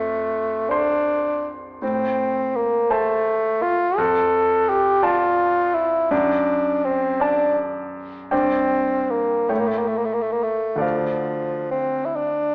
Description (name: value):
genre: classical, romantic duo for bassoon and grand piano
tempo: 44-57 BPM (dotted quarters)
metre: 6/8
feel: rubato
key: D minor from 4.0 s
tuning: A4 = 441 Hz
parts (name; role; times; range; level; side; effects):
- warm bassoon; melody; 0.0-12.5 s; F3 to A4; -19 LUFS; equal; none
- clear grand piano; accompaniment; 0.0-12.5 s; D2 to C6; -26 LUFS; equal; none
room: wet recital hall reverb, RT60 1.5 s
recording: AM radio sound, faint mains hum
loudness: -18 LUFS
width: side -30 dB against mid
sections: 0.0-12.5 A section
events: none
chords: 0.0 F; 1.8 Am; 4.0 Dm/F; 6.1 D/F#; 8.3 G5; 9.5 A7; 10.8 Dm